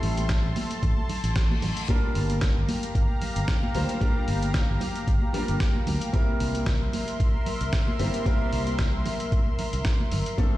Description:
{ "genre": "nu-disco, nu disco", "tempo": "113 BPM", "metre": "4/4", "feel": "swing 54% on 16ths", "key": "unclear", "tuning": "A4 = 441 Hz", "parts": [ { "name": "clear grand piano", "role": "accompaniment", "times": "0.0-10.6 s", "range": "F3 to C5", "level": "-32 LUFS", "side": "left 2 dB", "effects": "sidechain pumping, analog delay" }, { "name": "lush unison pad", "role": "sustained chords", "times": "0.0-10.6 s", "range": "G4 to D6", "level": "-34 LUFS", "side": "equal", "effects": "chorus, sidechain pumping" }, { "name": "fingered electric bass", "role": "bass", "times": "0.0-10.2 s", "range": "G1 to D2", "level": "-28 LUFS", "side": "equal", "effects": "sidechain pumping" }, { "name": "dusty soul sampler-style drum kit", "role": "drums", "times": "0.0-10.5 s", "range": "hi-hat, snare drum", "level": "-34 LUFS", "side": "equal", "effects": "none" }, { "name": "congas", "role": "percussion", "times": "0.2-10.5 s", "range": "none", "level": "-34 LUFS", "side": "right 2 dB", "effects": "none" }, { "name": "electronic kick drum", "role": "drums", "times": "0.3-10.5 s", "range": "none", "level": "-24 LUFS", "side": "equal", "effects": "none" }, { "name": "reverse cymbal", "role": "sound effects", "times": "1.1-1.9 s", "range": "none", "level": "-39 LUFS", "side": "left 5 dB", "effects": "none" } ], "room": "digital ambience", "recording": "played on a big sound system in a bare room, stone room reverb", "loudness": "-23 LUFS", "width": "side -15 dB against mid", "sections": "0.0-10.6 A section", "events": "reverse cymbal 1.1-1.9", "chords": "0.0 Am7; 1.9 Gm7; 6.1 C7" }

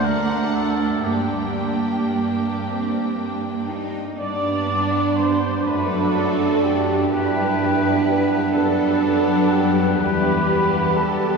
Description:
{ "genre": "classical, slow romantic movement for symphony orchestra", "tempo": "37-42 BPM (dotted quarters)", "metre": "6/8", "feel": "rubato", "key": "G minor, G major from 4.2 s", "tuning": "A4 = 439 Hz", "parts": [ { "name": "rich studio violin section", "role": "melody", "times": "0.0-11.4 s", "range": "D4 to G5", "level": "-30 LUFS", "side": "equal", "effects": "none" }, { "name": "clear oboe", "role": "second line", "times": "0.0-11.4 s", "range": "G4 to D5", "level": "-29 LUFS", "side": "left 1 dB", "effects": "none" }, { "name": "clear symphonic violin section", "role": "second line", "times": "0.0-11.4 s", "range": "A3 to D4", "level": "-29 LUFS", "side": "equal", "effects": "none" }, { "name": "rich symphonic viola section", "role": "accompaniment", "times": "0.0-11.4 s", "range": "A3 to D5", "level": "-26 LUFS", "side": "right 2 dB", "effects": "none" }, { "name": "concert harp", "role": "arpeggios", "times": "0.0-11.4 s", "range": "F#2 to B4", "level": "-27 LUFS", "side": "left 4 dB", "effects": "none" }, { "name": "clear symphonic double bass section", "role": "bass", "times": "0.0-11.4 s", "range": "D2 to G2", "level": "-28 LUFS", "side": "right 3 dB", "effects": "none" }, { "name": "rich symphonic cello section", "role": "bass", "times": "0.0-11.4 s", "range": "A3 to B4", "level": "-28 LUFS", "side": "right 3 dB", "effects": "none" }, { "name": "hollow concert flute", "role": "second line", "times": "4.2-11.4 s", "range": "G5 to D6", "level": "-26 LUFS", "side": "right 2 dB", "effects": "none" }, { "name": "warm clarinet", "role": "second line", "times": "4.2-11.1 s", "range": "B3 to G4", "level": "-25 LUFS", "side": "right 7 dB", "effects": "none" }, { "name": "mellow French horn section", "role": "sustained chords", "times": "4.2-11.4 s", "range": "G3 to D4", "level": "-25 LUFS", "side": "left 1 dB", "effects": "none" } ], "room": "wet cathedral reverb, RT60 5.0 s", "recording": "heard from further back in the room, small room ambience", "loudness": "-18 LUFS", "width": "side -4 dB against mid", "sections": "0.0-4.2 A section; 4.2-11.4 B section", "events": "none", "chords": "0.0 D; 1.1 Gm; 4.2 G; 5.7 D/F#; 10.0 Em" }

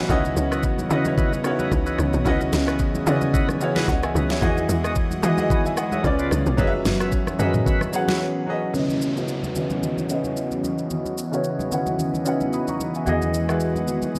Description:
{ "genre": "amapiano", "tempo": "111 BPM", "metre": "4/4", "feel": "swing 55% on 16ths", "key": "C# minor", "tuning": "A4 = 440 Hz", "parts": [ { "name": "clear grand piano", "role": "accompaniment", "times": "0.0-14.2 s", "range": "C#3 to D#6", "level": "-27 LUFS", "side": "equal", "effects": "low-pass filter" }, { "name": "airy breathy pad", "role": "sustained chords", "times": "0.0-14.2 s", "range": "C#3 to D#5", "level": "-30 LUFS", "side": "equal", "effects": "chorus, sidechain pumping, low-pass filter" }, { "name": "overdriven tonewheel organ", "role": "stabs", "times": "0.1-8.2 s", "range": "E4 to E5", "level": "-34 LUFS", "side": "equal", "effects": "slow rotary speaker, delay" }, { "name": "tight log drum bass", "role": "bass", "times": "0.1-7.9 s", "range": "F#1 to E3", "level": "-27 LUFS", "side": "equal", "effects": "none" }, { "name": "smooth R&B drum kit", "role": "drums", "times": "0.1-14.2 s", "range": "kick drum, rim click, shaker, snare drum, toms", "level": "-28 LUFS", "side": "equal", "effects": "none" }, { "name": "congas", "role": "percussion", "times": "0.1-14.2 s", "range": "none", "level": "-34 LUFS", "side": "equal", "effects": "none" }, { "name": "downlifter", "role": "sound effects", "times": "8.7-13.1 s", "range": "none", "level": "-40 LUFS", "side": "equal", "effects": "none" }, { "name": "fingered electric bass", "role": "bass", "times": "13.1-14.2 s", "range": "E2", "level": "-30 LUFS", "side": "equal", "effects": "none" } ], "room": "moderate plate reverb, RT60 2.3 s", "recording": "dreamy mix soaked in reverb", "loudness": "-22 LUFS", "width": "mono", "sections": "0.0-8.7 A section; 8.7-14.2 B section", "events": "drop 0.0-8.7; break 8.2-8.7; filter sweep 8.7-14.2", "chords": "0.1 C#m11; 4.4 Emaj9; 6.0 C#7b9; 6.6 F#7sus4; 8.7 C#m11; 13.1 Emaj9" }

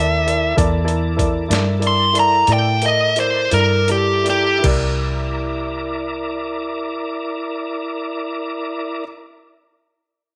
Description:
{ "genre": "slow blues", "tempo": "51-67 BPM (dotted quarters)", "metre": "12/8", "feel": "straight", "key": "C mixolydian", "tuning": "A4 = 440 Hz", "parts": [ { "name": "smooth overdriven lead guitar", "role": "melody", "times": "0.0-4.6 s", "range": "G4 to C6", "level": "-18 LUFS", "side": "equal", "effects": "none" }, { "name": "dark grand piano", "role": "accompaniment", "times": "0.0-9.0 s", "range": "E4 to E5", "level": "-27 LUFS", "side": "equal", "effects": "none" }, { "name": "tonewheel organ", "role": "sustained chords", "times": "0.0-9.1 s", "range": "E4 to D5", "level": "-28 LUFS", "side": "equal", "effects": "slow rotary speaker, chorus vibrato" }, { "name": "vintage muted fingered electric bass", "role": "bass", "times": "0.0-9.0 s", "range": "C2 to A2", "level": "-24 LUFS", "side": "equal", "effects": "none" }, { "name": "boom bap sampler-style drum kit", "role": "drums", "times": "0.3-4.8 s", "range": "crash cymbal, hi-hat, kick drum, snare drum", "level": "-25 LUFS", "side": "equal", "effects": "none" } ], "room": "moderate echo chamber reverb, RT60 1.4 s", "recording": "none", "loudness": "-19 LUFS", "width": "mono", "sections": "0.0-4.6 A section; 4.6-9.3 B section", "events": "slowing down 0.0-4.6; lead electric guitar solo 0.0-4.6; kick and snare drop out 2.5-4.6", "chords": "0.0 C13 (rootless); 4.6 C9" }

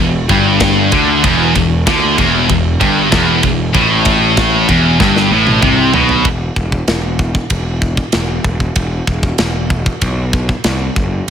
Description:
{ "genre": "heavy metal", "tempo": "96 BPM", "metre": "4/4", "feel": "straight", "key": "E minor", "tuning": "A4 = 440 Hz", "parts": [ { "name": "heavy high-gain guitar", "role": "riff", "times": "0.0-6.2 s", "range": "E2 to D3", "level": "-15 LUFS", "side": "right 10 dB", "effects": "distortion" }, { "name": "overdriven electric guitar", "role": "riff", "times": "0.0-6.3 s", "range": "E2 to D3", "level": "-15 LUFS", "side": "left 1 dB", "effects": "none" }, { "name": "scooped high-gain guitar", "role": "riff", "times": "0.0-6.2 s", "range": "E2 to D3", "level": "-16 LUFS", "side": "left 10 dB", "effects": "distortion" }, { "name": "fuzz picked electric bass", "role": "bass", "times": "0.0-11.3 s", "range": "E1 to D2", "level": "-17 LUFS", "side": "equal", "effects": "overdrive" }, { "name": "tight metal drum kit", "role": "drums", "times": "0.3-11.3 s", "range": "kick drum, ride cymbal, snare drum, toms", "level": "-16 LUFS", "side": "equal", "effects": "none" } ], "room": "light reverb", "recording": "none", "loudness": "-10 LUFS", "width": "side -8 dB against mid", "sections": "0.0-6.3 A section; 6.3-11.3 B section", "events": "drum fill 5.0-6.3", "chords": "0.0 Em; 6.3 E5; 10.7 N.C." }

